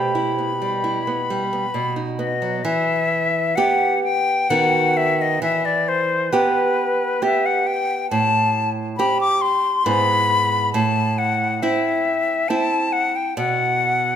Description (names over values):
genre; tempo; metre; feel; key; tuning
romantic duo for flute and classical guitar; 67 BPM; 3/4; rubato; E minor; A4 = 439 Hz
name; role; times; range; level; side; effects
bright silver concert flute; melody; 0.0-14.2 s; B4 to D6; -20 LUFS; left 4 dB; none
nylon-string guitar; accompaniment; 0.0-14.2 s; G#2 to G4; -21 LUFS; right 3 dB; none
room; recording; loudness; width
moderate concert hall reverb, RT60 2.3 s; none; -17 LUFS; side -9 dB against mid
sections
0.0-2.6 A section; 2.6-14.2 B section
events
none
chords
0.0 Em/B; 1.7 B; 2.6 Em; 4.5 B/D#; 5.4 Em; 8.1 Am7; 9.9 E/G#; 10.7 Am; 13.4 B5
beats
0.84 1.73 | 2.64 3.56 4.50 | 5.42 6.32 7.21 | 8.11 8.98 9.86 | 10.74 11.62 12.49 | 13.37